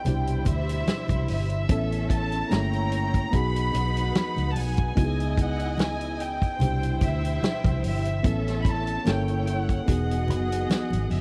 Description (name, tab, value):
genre	lush 1970s-style soul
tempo	73 BPM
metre	4/4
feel	swing 54% on 16ths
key	unclear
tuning	A4 = 440 Hz
part	warm studio violin section	melody	0.0-11.2 s	E5 to B5	-35 LUFS	equal	none
part	warm studio string section	second line	0.0-11.2 s	G3 to G#5	-38 LUFS	equal	none
part	barky reed electric piano	accompaniment	0.0-11.2 s	B2 to A4	-34 LUFS	equal	overdrive
part	mellow French horn section	sustained chords	0.0-11.2 s	Bb2 to D#5	-41 LUFS	equal	none
part	vintage muted fingered electric bass	bass	0.1-11.2 s	E1 to D2	-29 LUFS	equal	none
part	warm soul drum kit	drums	0.1-11.2 s	hi-hat, kick drum, snare drum	-29 LUFS	equal	none
part	congas	percussion	0.1-11.2 s	none	-36 LUFS	equal	none
room	little or no reverb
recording	dry, close 1970s-style studio recording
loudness	-25 LUFS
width	mono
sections	0.0-11.2 A section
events	none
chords	0.1 Cmaj7; 1.7 A; 2.5 Gdim7; 3.3 G#m7/B; 5.0 C#m9; 6.6 Cmaj7; 8.2 A; 9.1 Gdim7; 9.9 Emaj9